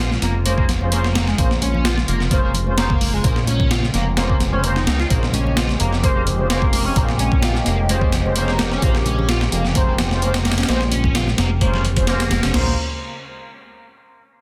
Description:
breakbeat, breaks; 129 BPM; 4/4; straight; Bb dorian; A4 = 438 Hz
phased analog pad; sustained chords; 0.0-12.8 s; Db3 to G4; -30 LUFS; equal; phaser, chorus, sidechain pumping
overdriven synth lead; riff; 0.0-12.8 s; Ab3 to F4; -28 LUFS; equal; distortion, phaser, ensemble chorus, cassette tape, dub echo
fat analog bass; bass; 0.0-12.8 s; F1 to Db2; -23 LUFS; equal
breakbeat sampler-style drum kit; drums; 0.1-12.7 s; crash cymbal, hi-hat, kick drum, snare drum, toms; -22 LUFS; equal
congas; percussion; 0.1-12.4 s; -33 LUFS; equal
mellow brass ensemble; stabs; 0.5-12.7 s; Db4 to C5; -30 LUFS; equal; dub echo
light reverb, digital ambience; dense, heavily limited modern master; -18 LUFS; mono
0.0-12.5 A section; 12.5-14.4 B section
drop 0.0-12.5
0.0 Bbm9

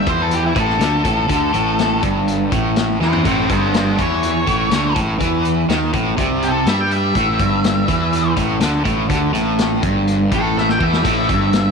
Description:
psychedelic rock; 123 BPM; 4/4; straight; A4 = 440 Hz
octave-fuzz lead guitar; melody; 0.0-11.7 s; E4 to G5; -21 LUFS; left 1 dB; distortion, tape echo
crunchy overdriven guitar; riff; 0.0-11.7 s; G2 to G3; -18 LUFS; right 1 dB; harmonic tremolo
fuzz fingered electric bass; bass; 0.0-11.7 s; G1 to G2; -22 LUFS; right 1 dB; overdrive
vintage drum kit; drums; 0.1-11.6 s; crash cymbal, hi-hat, kick drum, snare drum, toms; -22 LUFS; left 3 dB
light reverb, small room ambience; 1960s-style stereo; -14 LUFS; side -5 dB against mid
0.0-11.7 A section
lead electric guitar solo 0.0-11.7; drum fill 3.0, 10.6-11.0
0.0 A5

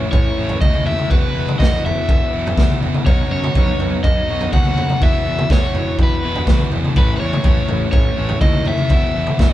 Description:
indie rock; 123 BPM; 4/4; straight; A lydian; A4 = 439 Hz
crunchy overdriven guitar; melody; 0.0-9.5 s; B4 to F#5; -23 LUFS; left 1 dB
thick fuzz guitar; riff; 0.0-9.5 s; E2 to A4; -26 LUFS; right 3 dB; distortion
twelve-string electric guitar; riff; 0.0-9.5 s; A2 to E4; -26 LUFS; left 7 dB; spring reverb
fuzz picked electric bass; bass; 0.0-9.5 s; E1 to F#2; -25 LUFS; equal; overdrive
raw garage drum kit; drums; 0.1-9.5 s; kick drum, snare drum, toms; -16 LUFS; equal
light reverb; band playing live in one room; -14 LUFS; side -14 dB against mid
0.0-9.5 A section
0.0 A; 1.1 Esus2; 3.1 Badd9; 5.0 Esus2; 7.0 A; 8.9 Esus2

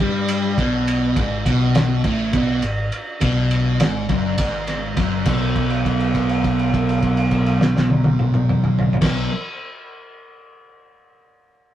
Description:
psychedelic rock; 205 BPM (eighths); 7/8; straight; A4 = 443 Hz
fuzz guitar; riff; 0.0-9.3 s; F#2 to B3; -19 LUFS; equal; distortion, phaser
picked electric bass; bass; 0.0-9.3 s; F#1 to G2; -28 LUFS; equal
cloth-damped thuddy drum kit; drums; 0.3-9.2 s; crash cymbal, kick drum, ride cymbal, snare drum, toms; -22 LUFS; equal
moderate booth ambience, RT60 0.2 s; rough rehearsal-room recording, tube saturation; -17 LUFS; side -12 dB against mid
0.0-5.3 A section; 5.3-9.4 B section
held note 5.3-9.0
0.0 N.C.; 1.2 F#sus24; 5.3 B5

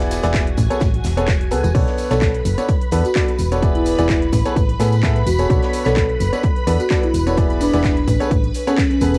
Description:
piano house; 128 BPM; 4/4; swing 54% on 16ths; B dorian; A4 = 440 Hz
string machine, violins; sustained chords; 0.0-9.2 s; F#4 to B5; -30 LUFS; equal; ensemble chorus, sidechain pumping, cassette tape
clear upright piano; riff; 0.0-9.1 s; B3 to E5; -25 LUFS; equal; sidechain pumping, cassette tape
solid FM bass; bass; 0.0-9.2 s; E1 to A2; -22 LUFS; equal; sidechain pumping
house drum kit; drums; 0.0-9.2 s; crash cymbal, handclaps, hi-hat, shaker; -32 LUFS; equal; overdrive, cassette tape
tight metal drum kit; drums; 0.0-9.1 s; hi-hat, snare drum; -41 LUFS; equal
tambourine and congas; percussion; 0.1-9.2 s; -38 LUFS; equal
electronic kick drum; drums; 0.3-8.9 s; -22 LUFS; equal; overdrive, cassette tape
marimba with soft mallets; melody; 2.1-9.2 s; C#4 to A4; -24 LUFS; equal
light reverb; home recording on cassette; -17 LUFS; mono
0.0-9.2 A section
0.0 E7; 0.6 Amaj9; 1.7 Bm9; 3.6 E7; 4.3 Amaj9; 5.5 Bm9; 7.4 E7; 8.1 Amaj9

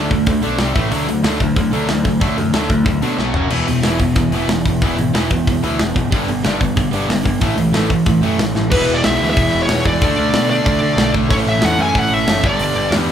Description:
punk rock; 185 BPM; 4/4; straight; A4 = 440 Hz
distorted electric guitar; riff; 0.0-13.1 s; E2 to D4; -21 LUFS; left 7 dB; overdrive
distorted electric guitar; riff; 0.0-13.1 s; G2 to F#4; -20 LUFS; right 6 dB; distortion
growling picked electric bass; bass; 0.0-13.1 s; E1 to D3; -22 LUFS; equal; overdrive
tight metal drum kit; drums; 0.1-13.0 s; crash cymbal, hi-hat, kick drum, snare drum, toms; -19 LUFS; equal
high-gain lead guitar; melody; 8.7-12.9 s; B4 to G#5; -18 LUFS; left 1 dB; distortion
light reverb; band playing live in one room; -14 LUFS; side -9 dB against mid
0.0-8.7 A section; 8.7-13.1 B section
drum fill 3.2-3.5, 8.6
0.0 D5; 0.6 C5; 0.8 A5; 0.9 D; 3.2 B5; 3.4 F#5; 3.5 E5; 6.1 G; 7.4 A5; 8.7 E; 10.0 D; 11.3 A; 12.4 G

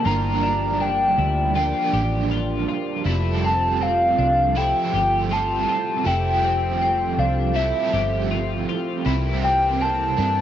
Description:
dream pop; 80 BPM; 4/4; straight; F major; A4 = 439 Hz
warbly nostalgic lead; melody; 0.0-10.4 s; E5 to Bb5; -21 LUFS; left 1 dB; chorus, plate reverb, tape echo
crunchy overdriven guitar; accompaniment; 0.0-10.4 s; G2 to Bb4; -27 LUFS; right 9 dB; tremolo, ensemble chorus, cassette tape
lush unison pad; sustained chords; 0.0-10.4 s; E3 to G4; -29 LUFS; equal; chorus, cassette tape
twelve-string electric guitar; arpeggios; 0.0-10.4 s; C4 to G4; -31 LUFS; left 12 dB; wide subtle chorus, cassette tape, plate reverb, tape echo
vintage muted fingered electric bass; bass; 0.1-10.4 s; F1 to G2; -24 LUFS; equal
wet booth ambience, RT60 0.2 s; home recording on cassette, nothing above 7.6 kHz; -19 LUFS; side -10 dB against mid
0.0-10.4 A section
0.1 Gm7; 3.1 Fmaj9; 9.1 C7

